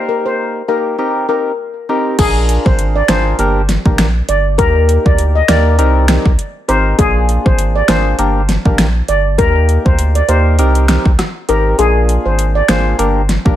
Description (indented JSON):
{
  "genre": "dancehall",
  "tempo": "100 BPM",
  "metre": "4/4",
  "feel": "swing 56% on 16ths",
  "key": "C minor",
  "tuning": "A4 = 440 Hz",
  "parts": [
    { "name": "percussive organ stab", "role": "accompaniment", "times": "0.0-13.6 s", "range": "Bb3 to Bb4", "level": "-18 LUFS", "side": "equal", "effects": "chorus, sidechain pumping" },
    { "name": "steel pan", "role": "melody", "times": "0.1-12.8 s", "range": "Ab4 to Eb5", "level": "-17 LUFS", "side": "left 1 dB", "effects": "tape echo" },
    { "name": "saturated sub bass", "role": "bass", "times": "2.2-13.6 s", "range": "G1 to Eb2", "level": "-14 LUFS", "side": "equal", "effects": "none" },
    { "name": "pop drum kit", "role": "drums", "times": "2.2-13.6 s", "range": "crash cymbal, finger snaps, hi-hat, kick drum, rim click, snare drum", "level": "-14 LUFS", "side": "equal", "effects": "overdrive" }
  ],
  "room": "little or no reverb",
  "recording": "none",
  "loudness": "-11 LUFS",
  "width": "side -12 dB against mid",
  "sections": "0.0-2.2 A section; 2.2-13.6 B section",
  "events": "break 0.0-2.2; kick muted 11.8-13.0",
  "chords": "0.0 Eb; 1.0 Cm7; 2.2 Bb7; 3.4 Gm; 4.6 Eb; 5.8 Cm7; 7.0 Bb7; 8.2 Gm; 9.4 Eb; 10.6 Cm7; 11.8 Bb7; 13.0 Gm",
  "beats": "0.39 0.99 1.59 | 2.19 2.79 3.39 3.99 | 4.59 5.19 5.79 6.39 | 6.99 7.59 8.19 8.79 | 9.39 9.99 10.59 11.19 | 11.79 12.39 12.99"
}